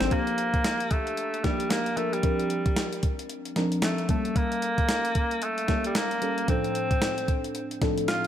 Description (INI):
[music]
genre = R&B, new jack swing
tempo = 113 BPM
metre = 4/4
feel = swing 60% on 16ths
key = G minor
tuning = A4 = 440 Hz
[part]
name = bright alto saxophone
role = melody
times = 0.0-8.3 s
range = G3 to F4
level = -28 LUFS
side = equal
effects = none
[part]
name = mellow FM electric piano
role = accompaniment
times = 0.0-8.3 s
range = A2 to Bb4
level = -30 LUFS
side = left 1 dB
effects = chorus, phaser, slapback echo
[part]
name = crisp 8-bit digital drum machine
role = drums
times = 0.0-8.3 s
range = handclaps, hi-hat, kick drum, snare drum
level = -28 LUFS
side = equal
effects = none
[sound]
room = moderate lush hall reverb, RT60 1.7 s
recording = big arena sound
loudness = -24 LUFS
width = side -10 dB against mid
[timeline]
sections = 0.1-8.3 A section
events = none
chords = 0.1 Gm7; 2.2 C9sus4; 4.1 A7b9; 6.5 Dm7/A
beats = | 0.11 0.65 1.18 1.71 | 2.24 2.77 3.30 3.83 | 4.36 4.89 5.42 5.95 | 6.49 7.02 7.55 8.08